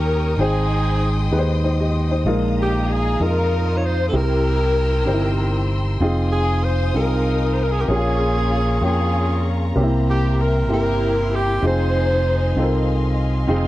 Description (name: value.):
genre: slow gospel.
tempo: 64 BPM (dotted quarters).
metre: 6/8.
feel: straight.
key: F minor.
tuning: A4 = 440 Hz.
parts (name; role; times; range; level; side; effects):
breathy alto saxophone; melody; 0.0-12.9 s; G4 to Db5; -24 LUFS; right 3 dB; none.
dark studio string section; melody; 0.0-12.9 s; C4 to C5; -26 LUFS; left 5 dB; none.
warm upright piano; accompaniment; 0.0-13.7 s; Ab2 to G5; -23 LUFS; equal; none.
dark studio string section; sustained chords; 0.0-13.7 s; Ab4 to E6; -32 LUFS; left 2 dB; none.
fingered electric bass; bass; 0.0-13.7 s; F1 to F2; -20 LUFS; equal; none.
bright tonewheel organ; sustained chords; 13.5-13.7 s; G3 to C5; -30 LUFS; equal; slow rotary speaker, overdrive, chorus vibrato.
room: little or no reverb.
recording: dry, close 1970s-style studio recording.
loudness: -17 LUFS.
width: side -16 dB against mid.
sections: 0.0-13.7 A section.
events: none.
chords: 0.4 Abmaj7; 2.3 Bb7sus4; 4.1 C7; 6.0 Fm7; 7.9 Bbm7; 9.8 C7; 11.6 Fm7.